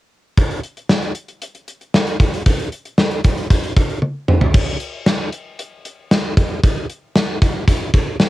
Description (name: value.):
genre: pop.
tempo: 115 BPM.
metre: 4/4.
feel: straight.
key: none.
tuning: none.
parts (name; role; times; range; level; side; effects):
gated 80s drum kit; drums; 0.4-8.3 s; crash cymbal, hi-hat, kick drum, snare drum, toms; -15 LUFS; equal; none.
room: moderate booth ambience, RT60 0.2 s.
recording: home recording on cassette.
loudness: -15 LUFS.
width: side -17 dB against mid.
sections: 0.4-4.5 A section; 4.5-8.3 B section.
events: drum fill 4.0-4.5.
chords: none.